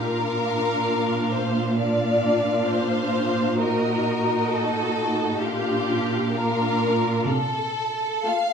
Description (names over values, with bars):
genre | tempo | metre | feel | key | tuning
classical, slow romantic movement for string orchestra | 58-68 BPM | 4/4 | rubato | Bb major | A4 = 439 Hz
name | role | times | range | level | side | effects
warm studio violin section | melody | 0.0-8.5 s | Eb5 to F5 | -32 LUFS | left 4 dB | none
warm symphonic violin section | second line | 0.0-8.5 s | G4 to F5 | -24 LUFS | left 1 dB | none
warm symphonic viola section | accompaniment | 0.0-8.5 s | A3 to Gb4 | -28 LUFS | equal | none
warm symphonic cello section | bass | 0.0-8.1 s | Bb2 to C3 | -26 LUFS | right 2 dB | none
room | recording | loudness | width
wet stone room reverb, RT60 1.1 s | heard from further back in the room | -21 LUFS | side -6 dB against mid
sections
0.0-8.5 A section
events
none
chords
0.0 Bb; 3.6 Ebm/Bb; 5.4 Bb; 7.3 F/C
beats
0.87 1.78 2.71 | 3.61 4.50 5.40 6.32 | 7.26 8.26